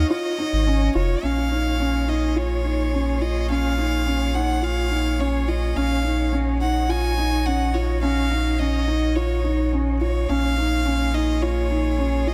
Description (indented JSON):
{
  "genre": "piano and strings electronica",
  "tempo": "106 BPM",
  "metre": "4/4",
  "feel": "straight",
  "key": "Bb minor",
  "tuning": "A4 = 440 Hz",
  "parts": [
    { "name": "clear violin", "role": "melody", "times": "0.0-12.3 s", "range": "Db5 to Ab5", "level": "-30 LUFS", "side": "equal", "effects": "none" },
    { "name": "clear string quartet", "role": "sustained chords", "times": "0.0-12.3 s", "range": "Bb3 to Db5", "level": "-34 LUFS", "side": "equal", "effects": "none" },
    { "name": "felt-muted upright piano", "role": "riff", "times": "0.0-12.3 s", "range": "Db4 to F4", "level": "-26 LUFS", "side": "equal", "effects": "delay" },
    { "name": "warm sub bass", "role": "bass", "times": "0.0-12.3 s", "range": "F1 to Bb1", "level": "-25 LUFS", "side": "equal", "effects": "none" }
  ],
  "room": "light reverb, studio ambience",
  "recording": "none",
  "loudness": "-22 LUFS",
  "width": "mono",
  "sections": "0.0-1.2 A section; 1.2-12.3 B section",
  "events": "none",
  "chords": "0.0 Ebm7; 1.2 Bbm7; 5.8 Ebm7/Bb; 10.3 Bbm7"
}